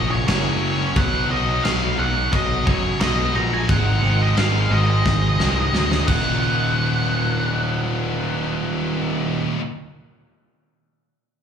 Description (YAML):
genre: quiet-loud alternative rock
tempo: 88 BPM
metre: 4/4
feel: straight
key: Eb minor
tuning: A4 = 440 Hz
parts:
  - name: octave-fuzz lead guitar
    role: melody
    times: 0.0-9.4 s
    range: Db5 to Bb5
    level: -24 LUFS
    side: equal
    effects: distortion, slapback echo, digital delay
  - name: heavy high-gain guitar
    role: riff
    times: 0.0-9.6 s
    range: Eb2 to Gb4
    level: -28 LUFS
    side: left 12 dB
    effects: distortion
  - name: scooped high-gain guitar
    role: riff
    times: 0.0-9.6 s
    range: Eb2 to Gb4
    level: -29 LUFS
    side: left 1 dB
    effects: distortion
  - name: thick fuzz guitar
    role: riff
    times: 0.0-9.6 s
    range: Eb2 to Gb4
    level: -29 LUFS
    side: right 10 dB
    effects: distortion
  - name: fuzz picked electric bass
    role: bass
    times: 0.0-9.4 s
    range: Eb1 to F#2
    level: -22 LUFS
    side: equal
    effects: overdrive
  - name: huge arena drum kit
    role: drums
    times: 0.3-6.2 s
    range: crash cymbal, kick drum, snare drum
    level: -23 LUFS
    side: equal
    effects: none
room: studio reverb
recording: live gig heard through the venue's PA, club reverb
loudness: -18 LUFS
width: side -7 dB against mid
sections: 0.0-6.4 A section; 6.4-9.2 B section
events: drum fill 5.1-6.4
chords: 0.0 Gb; 1.0 B; 3.7 Ab; 6.1 Ebm